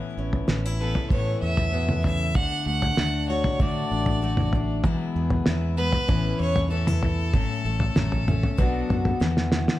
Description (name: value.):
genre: indie folk with a building arrangement.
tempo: 96 BPM.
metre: 4/4.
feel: straight.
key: A major.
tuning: A4 = 440 Hz.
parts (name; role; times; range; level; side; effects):
fingerpicked steel-string acoustic guitar; accompaniment; 0.0-9.8 s; A2 to B4; -31 LUFS; left 3 dB; none.
picked steel-string acoustic guitar; accompaniment; 0.0-9.8 s; E2 to F#4; -32 LUFS; left 5 dB; none.
fingered electric bass; bass; 0.2-9.7 s; A1 to D3; -27 LUFS; right 1 dB; none.
cloth-damped thuddy drum kit; drums; 0.3-9.8 s; kick drum, snare drum, toms; -24 LUFS; equal; none.
bright fiddle; melody; 0.8-9.2 s; A4 to F#5; -29 LUFS; right 1 dB; plate reverb, tape echo.
room: light reverb.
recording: dark, warm production.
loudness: -21 LUFS.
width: side -15 dB against mid.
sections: 0.0-9.8 A section.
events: drum fill 9.2-9.8.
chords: 0.0 Aadd9; 2.4 D; 4.8 Eadd9; 6.1 Aadd9; 7.3 F#m/A; 8.6 Bm; 9.2 Esus2.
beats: 0.48 1.10 1.73 | 2.35 2.97 3.60 4.22 | 4.84 5.46 6.09 6.71 | 7.33 7.96 8.58 9.20.